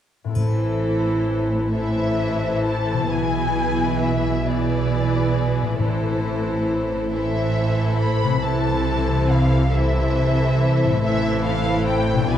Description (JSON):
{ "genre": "classical, slow romantic movement for symphony orchestra", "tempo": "43-47 BPM (dotted quarters)", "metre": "6/8", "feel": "rubato", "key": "A minor", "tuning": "A4 = 440 Hz", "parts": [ { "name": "concert harp", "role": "arpeggios", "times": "0.2-12.4 s", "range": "A2 to C5", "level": "-27 LUFS", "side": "left 6 dB", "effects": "none" }, { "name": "rich chamber violin section", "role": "second line", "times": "0.3-12.4 s", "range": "E4 to D5", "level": "-26 LUFS", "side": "left 3 dB", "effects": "none" }, { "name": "rich symphonic viola section", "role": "accompaniment", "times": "0.4-12.4 s", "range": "E3 to E4", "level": "-25 LUFS", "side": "equal", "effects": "none" }, { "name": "warm symphonic cello section", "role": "bass", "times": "0.4-12.4 s", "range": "A2 to C3", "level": "-25 LUFS", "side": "right 3 dB", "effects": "none" }, { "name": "warm symphonic double bass section", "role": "bass", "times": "0.4-12.4 s", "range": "A1 to C2", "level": "-25 LUFS", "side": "right 3 dB", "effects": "none" }, { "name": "timpani", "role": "percussion", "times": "0.4-7.1 s", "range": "A2", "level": "-27 LUFS", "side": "equal", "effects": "none" }, { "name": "triangle", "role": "percussion", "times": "0.4-2.1 s", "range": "none", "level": "-50 LUFS", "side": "left 2 dB", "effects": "none" }, { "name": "warm symphonic violin section", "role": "melody", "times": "1.7-12.4 s", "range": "D5 to B5", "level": "-27 LUFS", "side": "left 2 dB", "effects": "none" } ], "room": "moderate scoring stage reverb, RT60 1.7 s", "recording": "dark, warm production", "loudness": "-18 LUFS", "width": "side -10 dB against mid", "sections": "0.4-12.4 A section", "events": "none", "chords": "0.4 Am; 3.1 E7/B; 5.8 Am; 8.4 Am/C; 11.0 Am" }